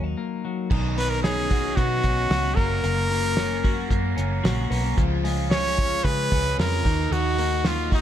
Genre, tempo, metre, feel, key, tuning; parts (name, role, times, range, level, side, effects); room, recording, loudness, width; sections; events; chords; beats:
jangly indie pop; 112 BPM; 4/4; straight; F# major; A4 = 439 Hz
twelve-string electric guitar; arpeggios; 0.0-8.0 s; D#3 to F#4; -29 LUFS; left 4 dB; ping-pong delay
vintage muted fingered electric bass; bass; 0.0-8.0 s; F#1 to C#3; -26 LUFS; equal
biting overdriven guitar; accompaniment; 0.7-8.0 s; F#2 to A#4; -31 LUFS; right 4 dB; phaser
cloth-damped thuddy drum kit; drums; 0.7-8.0 s; crash cymbal, hi-hat, kick drum, snare drum; -26 LUFS; equal
brilliant trumpet; melody; 1.0-8.0 s; D#4 to C#5; -26 LUFS; equal; plate reverb, ping-pong delay
moderate club reverb, RT60 0.6 s; dark, warm production; -21 LUFS; side -10 dB against mid
0.7-8.0 A section
break 0.2-0.7
0.0 D#m; 0.7 Badd9; 2.6 F#; 5.0 C#; 6.8 D#m
0.17 | 0.71 1.24 1.78 2.31 | 2.85 3.38 3.91 4.45 | 4.98 5.51 6.05 6.58 | 7.12 7.65